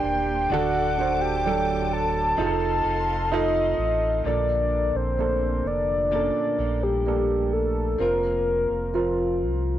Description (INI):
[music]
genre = pop ballad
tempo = 64 BPM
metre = 4/4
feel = straight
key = unclear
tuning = A4 = 443 Hz
[part]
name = warm concert grand piano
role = accompaniment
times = 0.0-9.8 s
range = Bb2 to C5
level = -27 LUFS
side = right 7 dB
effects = plate reverb
[part]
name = dark studio string section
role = sustained chords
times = 0.0-4.2 s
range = Bb3 to D6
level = -36 LUFS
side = left 1 dB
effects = plate reverb
[part]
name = direct-recorded clean electric guitar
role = arpeggios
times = 0.0-9.8 s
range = Bb2 to Bb4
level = -38 LUFS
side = left 9 dB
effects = vibrato effect
[part]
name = sub bass with octave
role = bass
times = 0.0-9.8 s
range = D1 to C2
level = -29 LUFS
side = left 1 dB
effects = none
[part]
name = soft octave-layered synth lead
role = melody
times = 0.1-9.8 s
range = F4 to A5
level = -24 LUFS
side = left 2 dB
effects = chorus, cassette tape, plate reverb
[sound]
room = moderate studio reverb, RT60 0.5 s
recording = home recording on cassette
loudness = -21 LUFS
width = side -12 dB against mid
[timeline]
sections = 0.0-4.2 A section; 4.2-9.8 B section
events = none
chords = 0.0 Gm; 0.5 D; 2.4 F7; 4.2 Bbmaj7; 8.0 Fsus4